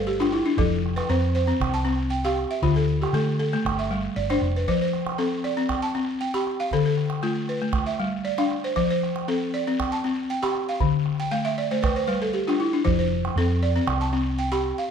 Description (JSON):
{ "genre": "west african traditional, West African string and xylophone music", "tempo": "117 BPM", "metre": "4/4", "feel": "straight", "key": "F lydian", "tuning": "A4 = 440 Hz", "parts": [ { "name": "balafon", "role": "arpeggios", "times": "0.0-14.9 s", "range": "D3 to B5", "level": "-23 LUFS", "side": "left 1 dB", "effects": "none" }, { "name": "hollow-body short-scale fingered electric bass", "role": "bass", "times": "0.0-4.6, 12.9-14.7 s", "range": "F1 to D3", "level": "-26 LUFS", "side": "right 1 dB", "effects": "none" }, { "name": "calabash", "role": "percussion", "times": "0.2-14.7 s", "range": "none", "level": "-31 LUFS", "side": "right 4 dB", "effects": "none" } ], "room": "light reverb", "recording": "dark, warm production", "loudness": "-22 LUFS", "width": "side -7 dB against mid", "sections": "0.0-4.7 A section; 4.7-14.9 A section", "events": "balafon fill 0.0-0.6, 11.2-12.9", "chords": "0.0 G5; 0.6 F; 1.6 C5; 2.6 Dm; 3.6 G5; 4.7 F; 5.7 C5; 6.7 Dm; 7.7 G; 8.8 F; 9.8 C5; 10.8 Dm; 11.8 G5; 12.9 F; 13.9 C5" }